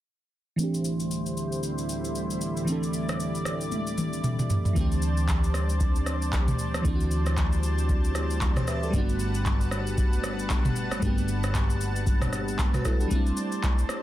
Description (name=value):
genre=amapiano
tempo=115 BPM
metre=4/4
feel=swing 58% on 16ths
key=unclear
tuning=A4 = 443 Hz
part: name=crystalline FM electric piano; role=accompaniment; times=0.6-14.0 s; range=E3 to E5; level=-31 LUFS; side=right 1 dB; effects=chorus, low-pass filter
part: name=lush unison pad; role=sustained chords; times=0.6-14.0 s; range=D2 to A5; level=-33 LUFS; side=equal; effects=chorus, low-pass filter
part: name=booming analog drum machine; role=drums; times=0.6-14.0 s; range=handclaps, kick drum, rim click, shaker, toms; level=-27 LUFS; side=equal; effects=none
part: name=hollow-body short-scale fingered electric bass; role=bass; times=4.8-13.1 s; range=G1 to D2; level=-28 LUFS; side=equal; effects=none
room=little or no reverb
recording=dense, heavily limited modern master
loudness=-24 LUFS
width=side -14 dB against mid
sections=0.6-4.8 A section; 4.8-14.0 B section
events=filter sweep 0.6-4.8; drum fill 3.7-4.8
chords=0.6 D7sus4; 8.9 Gmaj9; 13.1 D7sus4